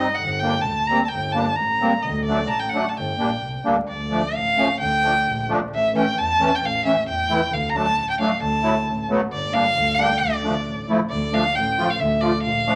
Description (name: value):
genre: klezmer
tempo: 132 BPM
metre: 2/4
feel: straight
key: G harmonic minor, D harmonic minor from 3.9 s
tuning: A4 = 439 Hz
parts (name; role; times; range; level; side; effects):
- warm violin; melody; 0.0-12.8 s; D5 to Bb5; -24 LUFS; equal; none
- musette accordion; accompaniment; 0.0-12.8 s; E3 to F4; -26 LUFS; equal; none
- dark double bass; bass; 0.2-12.7 s; G1 to E2; -30 LUFS; equal; none
room: wet club reverb, RT60 0.8 s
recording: vinyl crackle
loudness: -21 LUFS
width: mono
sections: 0.0-3.9 A section; 3.9-11.1 B section; 11.1-12.8 B section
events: speeding up 0.0-12.8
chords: 0.2 Gm; 2.0 D; 3.0 Gm; 3.9 Dm; 5.7 A; 7.5 D; 9.3 Gm; 10.2 Dm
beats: | 0.19 0.66 | 1.12 1.58 | 2.04 2.50 | 2.96 3.42 | 3.88 4.34 | 4.80 5.25 | 5.71 6.16 | 6.62 7.07 | 7.52 7.97 | 8.42 8.87 | 9.32 9.77 | 10.21 10.66 | 11.11 11.55 | 11.99 12.43